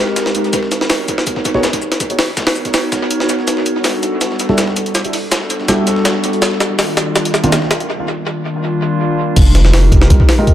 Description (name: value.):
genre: drum and bass, jungle.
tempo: 163 BPM.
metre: 4/4.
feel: straight.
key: unclear.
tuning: A4 = 442 Hz.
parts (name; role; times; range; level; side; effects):
warbly tape-like pad; sustained chords; 0.0-10.0 s; Eb3 to Bb4; -18 LUFS; equal; chorus, built-in reverb.
dusty soul sampler-style drum kit; drums; 0.1-7.8 s; hi-hat, shaker, snare drum; -25 LUFS; left 2 dB; overdrive, high-pass filter on perc, high-pass filter on snare, high-pass filter on hats, dub echo.
jungle sampler-style drum kit; drums; 0.2-10.5 s; crash cymbal, hi-hat, kick drum, snare drum; -15 LUFS; equal; high-pass filter on hats, high-pass filter on kick, high-pass filter on snare, high-pass filter on cymbals, dub echo.
long sustained 808-style bass; bass; 0.5-10.2 s; Eb1 to C2; -14 LUFS; equal; tube saturation, high-pass filter.
dark concert grand piano; stabs; 1.5-1.6, 4.5-7.5, 10.4-10.5 s; Eb3 to Db5; -20 LUFS; right 1 dB; vintage 12-bit sampler grit, dub echo.
room: moderate plate reverb, RT60 2.2 s.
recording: echo-heavy mix.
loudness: -12 LUFS.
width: side -12 dB against mid.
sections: 0.0-9.4 A section; 9.4-10.5 B section.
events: build-up 0.0-9.4; drum fill 3.5-7.9; break 7.9-9.4; drop 9.4-10.5.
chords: 0.0 Fm11 (rootless); 0.5 Abm11; 3.5 Em11; 6.4 Cm11; 9.4 Fm11.